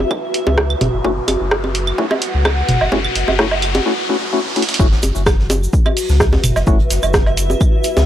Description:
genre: minimal techno.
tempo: 128 BPM.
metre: 4/4.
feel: swing 54% on 16ths.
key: F# minor.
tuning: A4 = 439 Hz.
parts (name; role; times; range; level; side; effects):
saturated sub bass; bass; 0.0-8.1 s; F#1 to C#2; -18 LUFS; equal; sidechain pumping.
electronic bongos, claves, toms and woodblock; percussion; 0.0-8.1 s; none; -20 LUFS; right 2 dB; analog delay.
riser; sound effects; 0.0-4.8 s; none; -24 LUFS; left 1 dB; none.
granular cloud pad; texture; 0.0-8.1 s; F#4 to F#5; -23 LUFS; equal; built-in reverb, sidechain pumping.
electronic kick drum; drums; 0.1-7.7 s; none; -16 LUFS; equal; high-pass filter on kick.
punchy analog drum machine; drums; 0.3-7.9 s; hi-hat, rim click; -19 LUFS; right 1 dB; high-pass filter on snare, high-pass filter on hats.
percussive organ stab; stabs; 1.0-6.8 s; A3 to F#4; -22 LUFS; left 3 dB; wide subtle chorus, vintage 12-bit sampler grit, analog delay.
jazz brush drum kit; drums; 4.8-8.1 s; hi-hat, shaker, snare drum; -31 LUFS; right 2 dB; sidechain pumping on hats, high-pass filter on hats, high-pass filter on snare, sidechain pumping on perc, high-pass filter on perc, high-pass filter on room.
tube shaker; percussion; 4.8-8.1 s; none; -28 LUFS; right 2 dB; none.
room: small room ambience.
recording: dry, gritty hardware recording.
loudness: -13 LUFS.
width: side -11 dB against mid.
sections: 0.0-4.8 A section; 4.8-8.1 B section.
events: build-up 0.0-4.8; riser 0.0-4.8; drum fill 4.6; drop 4.8-8.1.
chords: 0.0 F#m7; 4.8 F#7(no3).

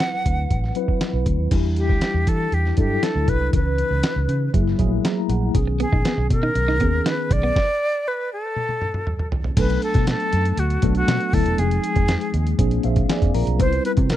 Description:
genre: polished 1980s jazz-funk pop.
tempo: 119 BPM.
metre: 4/4.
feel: straight.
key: unclear.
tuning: A4 = 440 Hz.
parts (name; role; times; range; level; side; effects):
breathy silver concert flute; melody; 0.0-14.2 s; F#4 to F#5; -24 LUFS; equal; tape echo.
mellow tine electric piano; accompaniment; 0.0-14.2 s; D#3 to A#5; -25 LUFS; left 2 dB; medium stereo tremolo, lush chorus.
lo-fi sampler-style drum kit; drums; 0.0-14.2 s; crash cymbal, hi-hat, kick drum, snare drum, toms; -22 LUFS; equal; none.
vintage muted fingered electric bass; bass; 0.3-14.2 s; E1 to E3; -22 LUFS; equal; none.
electric guitar at the edge of break-up; riff; 5.7-7.5 s; B3 to D#4; -26 LUFS; right 4 dB; analog chorus.
room: little or no reverb.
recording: dry, close 1970s-style studio recording.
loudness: -18 LUFS.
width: side -12 dB against mid.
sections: 0.0-1.5 A section; 1.5-9.6 B section; 9.6-14.2 C section.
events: tine electric piano fill 4.8-5.5, 12.6-13.6; stop 7.6-9.6; drum fill 8.6-9.6.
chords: 0.0 D13; 1.5 Em9; 3.5 C#m9; 4.5 F#9; 5.5 B69; 7.6 N.C.; 9.6 Bm7; 11.6 Fm7; 12.6 Bb9; 13.6 Cmaj7.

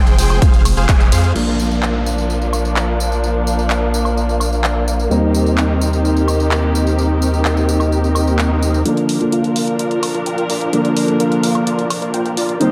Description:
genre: EDM, festival progressive house.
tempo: 128 BPM.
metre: 4/4.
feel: straight.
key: unclear.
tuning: A4 = 439 Hz.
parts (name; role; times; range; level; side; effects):
dark studio string section; sustained chords; 0.0-12.7 s; Eb2 to C5; -25 LUFS; equal; sidechain pumping.
dense compressed supersaw; riff; 0.0-12.7 s; C4 to G5; -23 LUFS; equal; sidechain pumping, low-pass filter, digital delay.
saturated sub bass; bass; 0.0-8.8 s; F1 to F2; -20 LUFS; equal; sidechain pumping.
big-room dance drum kit; drums; 0.1-12.7 s; crash cymbal, handclaps, hi-hat, ride cymbal, tambourine, woodblock; -26 LUFS; equal; none.
electronic kick drum; drums; 0.4-1.0 s; none; -14 LUFS; equal; none.
felt-muted upright piano; accompaniment; 1.3-12.7 s; D3 to F4; -23 LUFS; equal; sidechain pumping.
downlifter and swell; sound effects; 1.4-8.9 s; none; -32 LUFS; equal; none.
room: moderate lush hall reverb, RT60 1.9 s, digital ambience.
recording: dark, warm production.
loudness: -16 LUFS.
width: mono.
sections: 0.0-1.4 A section; 1.4-8.9 B section; 8.9-12.7 C section.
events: drop 0.0-1.4; band accent 0.9; swell 8.2-8.9; build-up 8.9-12.7; filter sweep on supersaw synth 8.9-12.7.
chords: 0.0 Fm; 1.4 Bb; 5.1 Eb6; 8.9 Bb.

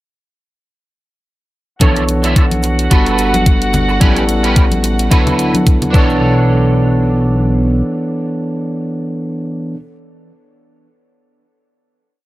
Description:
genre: nu-disco, nu disco.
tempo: 109 BPM.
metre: 4/4.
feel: swing 56% on 16ths.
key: B minor.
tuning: A4 = 440 Hz.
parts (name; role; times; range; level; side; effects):
overdriven tine electric piano; accompaniment; 1.8-9.8 s; E3 to C#5; -16 LUFS; equal; low-pass filter, dub echo.
warm studio violin section; sustained chords; 1.8-5.9 s; F#4 to F#5; -22 LUFS; right 1 dB; sidechain pumping, low-pass filter.
electric guitar at the edge of break-up; riff; 1.8-9.8 s; C#4 to E5; -21 LUFS; right 2 dB; ensemble chorus, low-pass filter, dub echo.
chorused synth bass; bass; 1.8-7.8 s; G1 to D2; -16 LUFS; equal; sidechain pumping.
electronic hi-hat; drums; 1.8-5.9 s; none; -22 LUFS; equal; none.
electronic kick drum; drums; 1.8-6.1 s; none; -10 LUFS; equal; overdrive.
congas and cabasa; percussion; 1.8-6.2 s; none; -22 LUFS; left 2 dB; none.
room: little or no reverb.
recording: none.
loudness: -11 LUFS.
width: side -17 dB against mid.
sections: 1.8-6.2 breakdown; 6.2-8.4 final hit.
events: filter sweep on tine electric piano 1.8-6.2.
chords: 1.8 Bm11; 2.9 Gmaj9; 4.0 A9; 5.1 D69; 5.9 Bm11.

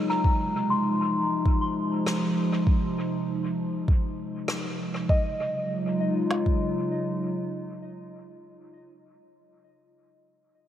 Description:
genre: ambient dub.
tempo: 99 BPM.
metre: 4/4.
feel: straight.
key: Eb dorian.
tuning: A4 = 438 Hz.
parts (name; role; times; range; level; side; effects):
warbly tape-like pad; sustained chords; 0.0-8.3 s; C3 to F4; -27 LUFS; equal; chorus, built-in reverb.
soft synth bell; arpeggios; 0.0-10.0 s; Bb3 to C6; -31 LUFS; left 2 dB; chorus, low-pass filter, tape echo.
organic electronic drum kit; drums; 0.2-6.6 s; kick drum, snare drum; -23 LUFS; equal; overdrive.
rim click; drums; 2.1-4.6 s; none; -36 LUFS; equal; dub echo.
room: wet huge ambient reverb, RT60 4.5 s.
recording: dreamy mix soaked in reverb.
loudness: -24 LUFS.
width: side -11 dB against mid.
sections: 0.0-5.1 A section; 5.1-7.5 B section.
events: filter sweep on synth bell 0.0-5.1.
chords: 0.2 Fm7; 5.1 Ebm11.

